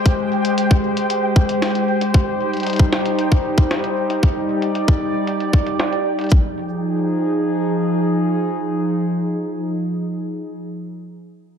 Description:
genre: IDM.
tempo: 115 BPM.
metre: 4/4.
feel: straight.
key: F dorian.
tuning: A4 = 440 Hz.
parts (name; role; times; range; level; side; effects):
warbly tape-like pad; sustained chords; 0.0-10.5 s; F3 to D5; -19 LUFS; equal; chorus, built-in reverb.
flickering grainy texture; texture; 0.0-6.3 s; G5; -30 LUFS; equal; built-in reverb, sidechain pumping.
electronic kick drum; drums; 0.1-6.4 s; none; -15 LUFS; equal; none.
jungle sampler-style drum kit; drums; 0.1-6.3 s; hi-hat, snare drum; -26 LUFS; left 1 dB; low-pass filter on hats, low-pass filter on snare, low-pass filter on room, digital delay.
room: light reverb.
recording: none.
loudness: -17 LUFS.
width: side -7 dB against mid.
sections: 0.0-6.3 A section; 6.3-10.5 B section.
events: filter sweep on drum 0.0-6.3.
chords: 0.0 Abmaj7; 2.1 Eb6/G; 6.3 Fm7.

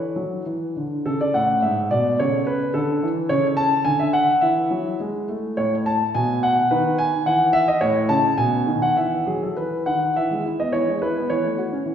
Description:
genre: classical-period piano sonatina.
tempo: 98-110 BPM.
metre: 2/4.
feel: rubato.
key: A major, E major from 5.6 s.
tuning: A4 = 440 Hz.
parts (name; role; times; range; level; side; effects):
warm concert grand piano; solo; 0.0-11.9 s; G#2 to A5; -19 LUFS; equal; none.
room: wet recital hall reverb, RT60 1.6 s.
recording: recorded in a church or concert hall.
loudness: -18 LUFS.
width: side -8 dB against mid.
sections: 0.0-1.1 A section; 1.1-10.2 A section; 10.2-11.9 B section.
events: none.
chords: 0.5 Dsus2; 1.1 A/C#; 1.6 E7/G#; 2.2 A/C#; 3.8 N.C.; 4.4 E; 5.6 A; 6.1 N.C.; 7.8 A; 8.4 B; 9.0 Emaj9; 10.2 E; 11.3 F#m7/E.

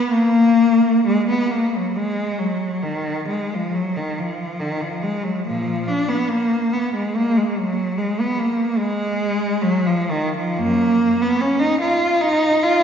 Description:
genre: classical, free, expressive piece for unaccompanied cello.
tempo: 57-77 BPM.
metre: 3/4.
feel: rubato.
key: unclear.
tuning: A4 = 437 Hz.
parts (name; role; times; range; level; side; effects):
rich cello; solo; 0.0-12.8 s; Gb2 to F4; -17 LUFS; equal; none.
room: wet scoring stage reverb, RT60 2.0 s.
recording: recorded in a church or concert hall, nothing above 7.5 kHz.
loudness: -17 LUFS.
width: side -7 dB against mid.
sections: 0.1-12.8 A section.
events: none.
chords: none.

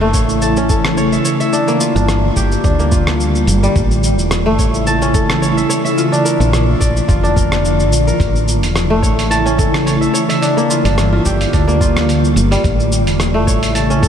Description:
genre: organic downtempo.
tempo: 108 BPM.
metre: 4/4.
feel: swing 55% on 16ths.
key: A phrygian dominant.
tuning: A4 = 440 Hz.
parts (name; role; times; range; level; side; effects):
ethereal airy pad; sustained chords; 0.0-14.1 s; C#3 to F4; -17 LUFS; equal; ensemble chorus, built-in reverb, sidechain pumping.
kora; arpeggios; 0.0-14.1 s; G3 to A5; -17 LUFS; left 1 dB; tape echo.
woody fretless electric bass; bass; 0.0-14.1 s; E1 to D2; -17 LUFS; equal; sidechain pumping.
dusty soul sampler-style drum kit; drums; 0.1-14.1 s; cabasa, hi-hat, rim click; -22 LUFS; equal; none.
electronic kick drum; drums; 0.1-14.1 s; none; -16 LUFS; equal; none.
room: moderate huge ambient reverb, RT60 8.1 s.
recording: dreamy mix soaked in reverb.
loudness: -12 LUFS.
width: side -8 dB against mid.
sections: 0.0-14.1 A section.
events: none.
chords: 0.0 A; 1.5 Gm7; 3.8 A; 6.0 Bb; 8.2 A; 10.4 Gm7; 12.6 A.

